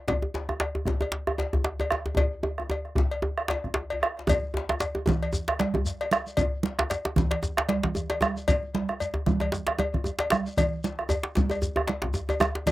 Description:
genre	west african traditional, West African drum ensemble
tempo	114 BPM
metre	4/4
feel	swing 56% on 16ths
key	none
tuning	none
part	bombo	percussion	0.1-12.7 s	none	-28 LUFS	right 2 dB	none
part	cowbell	percussion	0.1-12.7 s	none	-32 LUFS	left 3 dB	slapback echo
part	djembe	percussion	0.1-12.7 s	none	-32 LUFS	left 2 dB	none
part	djembe	percussion	0.1-12.7 s	none	-29 LUFS	equal	none
part	congas	percussion	4.3-12.7 s	none	-29 LUFS	right 4 dB	none
part	shekere	percussion	4.3-12.7 s	none	-35 LUFS	left 1 dB	none
room	little or no reverb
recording	recorded outdoors, with no room sound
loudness	-25 LUFS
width	side -16 dB against mid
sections	0.0-4.3 A section; 4.3-12.7 B section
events	drum fill 2.2-4.3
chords	none

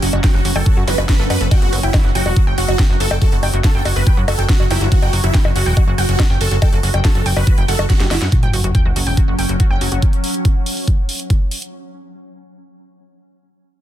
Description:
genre	psychedelic trance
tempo	141 BPM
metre	4/4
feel	straight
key	F# phrygian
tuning	A4 = 440 Hz
part	pulsing gated texture	sustained chords	0.0-11.8 s	F#3 to F#4	-26 LUFS	equal	chorus, built-in reverb, sidechain pumping
part	wide unison pluck	riff	0.0-10.0 s	F#4 to G5	-26 LUFS	right 2 dB	auto-pan, sidechain pumping, dub echo
part	plucky analog bass	bass	0.0-10.0 s	E1 to F#2	-19 LUFS	equal	none
part	drum and bass drum kit	drums	0.0-11.7 s	bongos, hi-hat, snare drum	-23 LUFS	left 1 dB	overdrive
part	dense compressed supersaw	melody	0.2-8.3 s	E4 to B4	-24 LUFS	right 2 dB	phaser, sidechain pumping, dub echo
part	electronic kick drum	drums	0.2-11.4 s	none	-14 LUFS	equal	overdrive
part	zap and sub drop	sound effects	0.9-1.0, 4.7-4.8, 8.3-10.0 s	none	-25 LUFS	equal	none
part	formant-sweep wobble bass	second line	1.6-3.7 s	E3 to B3	-37 LUFS	right 4 dB	none
part	deep dark ambient pad	texture	9.4-11.7 s	F#4 to F#5	-35 LUFS	left 2 dB	chorus, built-in reverb, sidechain pumping
room	little or no reverb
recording	dense, heavily limited modern master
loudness	-13 LUFS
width	side -12 dB against mid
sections	0.0-8.3 A section; 8.3-11.7 B section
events	drop 0.0-8.3; drum fill 7.9-8.3; fade-out on ambient pad 8.3-11.7; impact 8.3-10.0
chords	0.0 F#5

